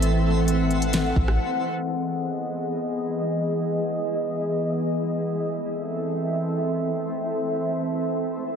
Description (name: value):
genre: hip hop, atmospheric cloud-rap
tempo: free time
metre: none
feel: none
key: E major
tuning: A4 = 437 Hz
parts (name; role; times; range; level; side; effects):
- glassy FM pad; sustained chords; 0.0-8.6 s; E3 to F#5; -24 LUFS; equal; ensemble chorus, built-in reverb, sidechain pumping
- soft 808-style bass; bass; 0.0-1.4 s; A1; -24 LUFS; equal; none
- smooth R&B drum kit; drums; 0.0-1.4 s; hi-hat, kick drum, rim click, snare drum; -29 LUFS; left 1 dB; none
- twinkling granular texture; texture; 0.0-8.6 s; G#3 to D#5; -35 LUFS; right 1 dB; built-in reverb, wide subtle chorus
room: wet cathedral reverb, RT60 5.5 s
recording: dreamy mix soaked in reverb, low-pass filter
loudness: -23 LUFS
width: side -7 dB against mid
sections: 0.0-1.8 A section; 1.8-8.6 B section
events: break 1.4-1.8; filter sweep 1.8-8.6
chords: 0.0 Am; 1.8 Emaj7; 5.5 Am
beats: free time